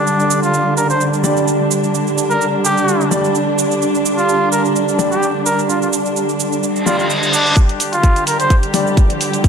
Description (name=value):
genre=bass house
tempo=128 BPM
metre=4/4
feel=swing 54% on 16ths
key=unclear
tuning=A4 = 440 Hz
part: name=trumpet with cup mute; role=melody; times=0.0-8.5 s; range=D4 to C5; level=-19 LUFS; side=equal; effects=ping-pong delay
part: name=muted chamber string section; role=sustained chords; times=0.0-9.5 s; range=D3 to G4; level=-19 LUFS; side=right 1 dB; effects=sidechain pumping
part: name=deep dark ambient pad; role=texture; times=0.0-9.5 s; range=G4 to A5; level=-21 LUFS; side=right 2 dB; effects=chorus, built-in reverb, sidechain pumping
part: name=electronic shaker and hi-hat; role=drums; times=0.1-9.5 s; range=none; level=-23 LUFS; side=right 7 dB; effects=none
part: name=warm baby grand piano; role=stabs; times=1.2-9.0 s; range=G3 to D5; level=-20 LUFS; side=left 2 dB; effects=sidechain pumping, low-pass filter, ping-pong delay
part: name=reverse cymbal and riser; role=sound effects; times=6.8-9.5 s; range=none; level=-20 LUFS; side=left 1 dB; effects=none
part: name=electronic kick drum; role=drums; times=7.6-9.5 s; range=none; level=-11 LUFS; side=equal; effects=none
room=wet plate reverb, RT60 1.3 s, digital ambience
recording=dreamy mix soaked in reverb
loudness=-13 LUFS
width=side -6 dB against mid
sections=0.0-7.6 A section; 7.6-9.5 B section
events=reverse cymbal 6.8-7.6; build-up 7.6-9.5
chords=0.0 G5